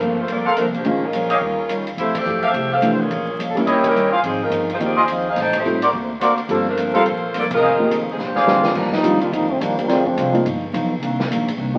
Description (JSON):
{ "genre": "jazz, big band swing", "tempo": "212 BPM", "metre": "4/4", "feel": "swing 61% on 8ths", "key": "G minor", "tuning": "A4 = 440 Hz", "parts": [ { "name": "clear saxophone section", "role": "melody", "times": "0.0-8.6 s", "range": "F3 to G5", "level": "-23 LUFS", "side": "equal", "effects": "none" }, { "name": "fingerpicked steel-string acoustic guitar", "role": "accompaniment", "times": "0.0-11.8 s", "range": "F2 to G4", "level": "-28 LUFS", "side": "equal", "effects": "none" }, { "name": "upright bass", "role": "bass", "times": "0.0-11.8 s", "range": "F1 to A2", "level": "-33 LUFS", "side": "equal", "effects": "none" }, { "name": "open jazz drum kit", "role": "drums", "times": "0.0-11.7 s", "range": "crash cymbal, hi-hat, kick drum, ride cymbal, snare drum", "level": "-32 LUFS", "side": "equal", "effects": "none" }, { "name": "mellow trumpet section", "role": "stabs", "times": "0.4-8.7 s", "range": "Fb4 to F5", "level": "-21 LUFS", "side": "equal", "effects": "none" }, { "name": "warm upright piano", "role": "accompaniment", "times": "0.8-11.8 s", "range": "D3 to D5", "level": "-25 LUFS", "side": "equal", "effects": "none" }, { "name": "clear trombone section", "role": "second line", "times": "8.5-10.5 s", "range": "D3 to F4", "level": "-22 LUFS", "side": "equal", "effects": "none" } ], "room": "wet studio reverb, RT60 0.9 s", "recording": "very old 78 rpm record, vinyl crackle", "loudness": "-19 LUFS", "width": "mono", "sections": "0.0-8.8 A section; 8.8-11.8 B section", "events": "band accent 2.1, 3.8, 5.5, 7.5; drum fill 8.2-8.8; trombone section solo 8.8-11.8", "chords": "0.0 Gm11; 0.8 Bbm7; 1.4 Eb9; 2.0 Fmaj9; 3.1 Bbm7; 3.7 Eb7b9; 4.2 Ab6; 5.4 Am7b5; 5.9 D7b13; 6.5 Gm11; 7.6 Fm7; 8.2 Bb13; 8.8 Ebmaj9; 9.9 Dm7b5; 10.4 Gaug7; 11.0 Cm9" }